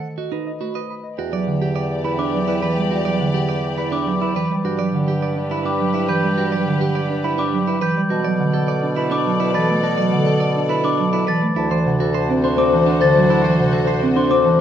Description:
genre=classical, minimalist pattern music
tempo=104 BPM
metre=3/4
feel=straight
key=E minor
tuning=A4 = 439 Hz
part: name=concert harp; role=melody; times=0.0-14.6 s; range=G4 to B5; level=-25 LUFS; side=left 7 dB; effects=none
part: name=clean electric guitar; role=arpeggios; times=0.0-14.5 s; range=C4 to D#5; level=-26 LUFS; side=right 10 dB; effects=none
part: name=folk marimba with soft mallets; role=accompaniment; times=0.6-14.6 s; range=C3 to D4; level=-21 LUFS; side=right 2 dB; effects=none
part: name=rich symphonic string section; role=sustained chords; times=1.2-14.6 s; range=F#4 to D5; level=-28 LUFS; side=left 3 dB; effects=none
part: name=mellow bassoon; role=bass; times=1.2-14.6 s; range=D2 to B2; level=-24 LUFS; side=right 1 dB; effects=none
part: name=glockenspiel with soft plastic mallets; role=arpeggios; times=2.0-14.5 s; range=B5 to A6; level=-25 LUFS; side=left 2 dB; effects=none
room=moderate recital hall reverb, RT60 1.5 s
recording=dark, warm production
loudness=-16 LUFS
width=side -10 dB against mid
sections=0.0-1.2 A section; 1.2-14.6 B section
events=none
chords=0.0 B7; 1.2 Em7; 4.6 Gmaj7; 8.1 Bm7; 11.6 D7

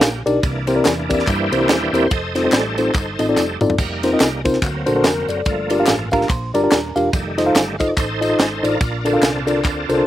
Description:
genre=uptempo gospel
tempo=143 BPM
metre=4/4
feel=swing 59% on 8ths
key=unclear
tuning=A4 = 439 Hz
part: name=mellow tine electric piano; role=accompaniment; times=0.0-10.1 s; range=G2 to F5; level=-18 LUFS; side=left 1 dB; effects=none
part: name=bright tonewheel organ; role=sustained chords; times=0.0-10.1 s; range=D3 to F5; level=-23 LUFS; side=right 2 dB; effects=slow rotary speaker, chorus vibrato
part: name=hollow-body short-scale fingered electric bass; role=bass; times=0.0-10.0 s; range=Eb1 to G2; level=-27 LUFS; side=equal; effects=none
part: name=tight funk drum kit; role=drums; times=0.0-10.0 s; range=crash cymbal, kick drum, ride cymbal, snare drum, toms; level=-20 LUFS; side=right 1 dB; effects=none
part: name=handclaps and tambourine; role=percussion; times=0.0-10.0 s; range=none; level=-29 LUFS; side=left 2 dB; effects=none
part: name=clean electric guitar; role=second line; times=6.1-7.1 s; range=D4 to C5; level=-27 LUFS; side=right 6 dB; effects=slapback echo
room=little or no reverb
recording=recorded outdoors, with no room sound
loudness=-15 LUFS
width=side -13 dB against mid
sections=0.0-10.1 A section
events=tonewheel organ solo 0.0-10.1; drum fill 3.4-3.8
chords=0.4 C7; 2.1 F7; 3.8 F7sus4; 4.6 D7b13; 5.5 Gm7; 7.1 F7; 8.8 Bbmaj7

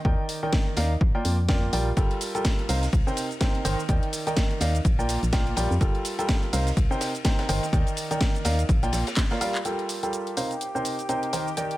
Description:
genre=piano house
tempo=125 BPM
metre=4/4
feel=swing 58% on 16ths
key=unclear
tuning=A4 = 440 Hz
part: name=clear concert grand piano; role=riff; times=0.0-11.8 s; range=C3 to G5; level=-28 LUFS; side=right 1 dB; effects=sidechain pumping, low-pass filter, digital delay
part: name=electronic kick drum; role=drums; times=0.0-9.3 s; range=none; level=-23 LUFS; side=equal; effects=none
part: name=organ-like FM bass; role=bass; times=0.1-9.0 s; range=G1 to F2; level=-25 LUFS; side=equal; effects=sidechain pumping
part: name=house drum kit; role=drums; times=0.3-11.8 s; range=handclaps, hi-hat, shaker, snare drum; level=-31 LUFS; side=equal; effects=none
part: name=tight funk drum kit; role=drums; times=2.0-9.5 s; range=hi-hat, ride cymbal, snare drum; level=-39 LUFS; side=left 3 dB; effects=sidechain pumping on cymbals, high-pass filter on cymbals, sidechain pumping on hats, high-pass filter on hats, high-pass filter on snare, high-pass filter on room
part: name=clear studio violin section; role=sustained chords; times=9.7-11.8 s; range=G4 to G5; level=-35 LUFS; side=left 1 dB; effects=sidechain pumping, low-pass filter
room=little or no reverb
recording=none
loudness=-22 LUFS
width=side -16 dB against mid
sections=0.0-9.6 A section; 9.6-11.8 B section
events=drum fill 9.2-9.6; filter sweep on grand piano 9.6-11.8; filter sweep on violin section 9.6-11.8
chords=0.0 Ebmaj7; 1.0 Bb6; 2.0 Gm9; 2.7 Cm7; 3.9 Ebmaj7; 4.8 Bb6; 5.8 Gm9; 6.5 Cm7; 7.7 Ebmaj7; 8.7 Bb6; 9.6 Gm9; 10.4 Cm7

